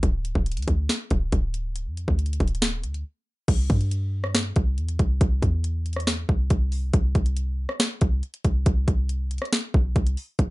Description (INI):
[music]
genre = hip hop, trap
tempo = 139 BPM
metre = 4/4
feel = half-time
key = C major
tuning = A4 = 437 Hz
[part]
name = warm 808-style bass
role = bass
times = 0.0-10.5 s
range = D1 to G2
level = -24 LUFS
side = equal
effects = none
[part]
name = trap drum kit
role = drums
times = 0.0-10.5 s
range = crash cymbal, hi-hat, kick drum, rim click, snare drum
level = -24 LUFS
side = equal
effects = none
[sound]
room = little or no reverb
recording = rough home demo mix, nothing above 11.0 kHz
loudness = -22 LUFS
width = side -21 dB against mid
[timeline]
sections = 0.0-3.5 A section; 3.5-10.5 B section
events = break 3.1-3.5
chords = none